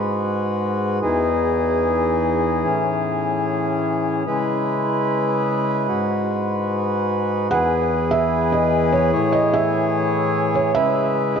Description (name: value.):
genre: hip hop.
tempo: 148 BPM.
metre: 4/4.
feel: half-time.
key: E major.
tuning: A4 = 437 Hz.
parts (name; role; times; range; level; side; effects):
hand-pumped harmonium; sustained chords; 0.0-11.4 s; E2 to C#5; -18 LUFS; left 1 dB; none.
felt-muted upright piano; melody; 7.5-11.4 s; C#5 to F#5; -21 LUFS; right 4 dB; low-pass filter, diffuse ambient delay.
room: wet plate reverb, RT60 3.0 s.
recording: dreamy mix soaked in reverb.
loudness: -18 LUFS.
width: side -6 dB against mid.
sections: 0.0-7.5 A section; 7.5-11.4 B section.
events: none.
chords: 0.0 G#m7; 1.0 Emaj7; 2.6 Amaj7; 4.3 C#m7; 5.9 G#m7; 7.5 Emaj7; 9.1 Amaj7; 10.8 C#m7.